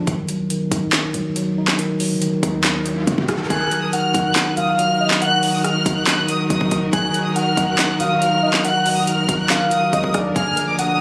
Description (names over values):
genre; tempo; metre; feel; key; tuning
hip hop, trap; 140 BPM; 4/4; half-time; Eb harmonic minor; A4 = 442 Hz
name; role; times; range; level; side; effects
mellow tine electric piano; accompaniment; 0.0-11.0 s; D3 to D#4; -24 LUFS; equal; none
warm 808-style bass; bass; 0.0-11.0 s; Eb1 to D#3; -33 LUFS; equal; none
trap drum kit; drums; 0.1-10.9 s; handclaps, hi-hat, kick drum, rim click, snare drum; -23 LUFS; equal; none
riser; sound effects; 2.3-3.5 s; none; -32 LUFS; equal; none
warm studio violin section; melody; 3.5-11.0 s; D6 to Gb6; -25 LUFS; equal; none
soft octave-layered synth lead; second line; 3.5-11.0 s; D5 to Ab5; -24 LUFS; equal; chorus, delay
warm studio string section; sustained chords; 3.5-11.0 s; Eb3 to Bb4; -30 LUFS; equal; none
room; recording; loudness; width
light reverb; recorded on a phone in the room, club reverb, compression; -19 LUFS; mono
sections
0.0-3.5 A section; 3.5-11.0 B section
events
riser 2.3-3.5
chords
0.1 B; 3.5 Ebm; 10.4 Bb